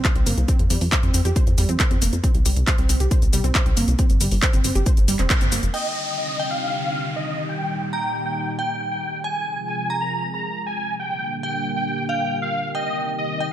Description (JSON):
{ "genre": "uplifting trance", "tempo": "137 BPM", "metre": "4/4", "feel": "straight", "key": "C minor", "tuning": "A4 = 439 Hz", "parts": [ { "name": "wide unison pluck", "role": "arpeggios", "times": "0.0-5.6 s", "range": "G3 to C5", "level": "-27 LUFS", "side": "right 2 dB", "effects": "sidechain pumping, tape echo" }, { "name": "electronic kick drum", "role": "drums", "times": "0.0-5.4 s", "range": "none", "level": "-20 LUFS", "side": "equal", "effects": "none" }, { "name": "techno drum kit", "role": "drums", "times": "0.0-5.8 s", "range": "crash cymbal, handclaps, hi-hat, shaker", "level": "-25 LUFS", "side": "equal", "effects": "sidechain pumping on hats, sidechain pumping on perc, sidechain pumping on cymbals" }, { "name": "plucky analog bass", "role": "bass", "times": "0.2-5.7 s", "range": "F1 to F2", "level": "-21 LUFS", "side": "equal", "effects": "sidechain pumping" }, { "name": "supersaw chords", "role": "melody", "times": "5.7-13.4 s", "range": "Eb5 to Bb5", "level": "-26 LUFS", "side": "equal", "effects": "ensemble chorus, sidechain pumping, low-pass filter, tape echo" }, { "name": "glassy synth bell", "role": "second line", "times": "5.7-13.5 s", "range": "F5 to Bb5", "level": "-29 LUFS", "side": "equal", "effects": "chorus, tape echo" }, { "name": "lush unison pad", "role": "sustained chords", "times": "5.7-13.5 s", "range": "Bb2 to Ab4", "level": "-29 LUFS", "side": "equal", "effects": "chorus, sidechain pumping" }, { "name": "downlifter", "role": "sound effects", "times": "5.7-9.2 s", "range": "none", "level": "-32 LUFS", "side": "equal", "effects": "none" } ], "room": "light reverb", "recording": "none", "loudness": "-19 LUFS", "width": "side -11 dB against mid", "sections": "0.0-5.7 A section; 5.7-13.5 B section", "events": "band accent 5.3; filter sweep on supersaw synth 5.7-13.5; filter sweep on analog synth pad 5.7-13.5", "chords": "0.5 F5; 2.2 C5; 4.0 N.C.; 5.7 Cmadd9; 7.5 Eb; 9.2 Fm; 11.0 Gm; 12.7 Cm" }